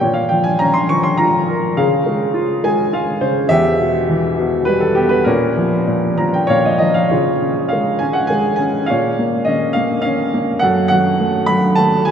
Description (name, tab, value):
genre	classical, lyrical solo piano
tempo	102 BPM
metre	3/4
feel	rubato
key	Bb dorian, Db mixolydian from 7.1 s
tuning	A4 = 440 Hz
part	warm upright piano	solo	0.0-12.1 s	E2 to Db6	-14 LUFS	equal	none
room	wet cathedral reverb, RT60 5.2 s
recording	in a vast, echoing space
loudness	-14 LUFS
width	side -8 dB against mid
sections	0.0-7.1 A section; 7.1-12.1 B section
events	upright piano fill 2.4-3.5, 5.9-7.1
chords	0.0 Bbm; 1.8 Db; 3.5 Em; 5.3 Bbm; 7.1 Db; 8.9 Bbm; 10.6 Gbm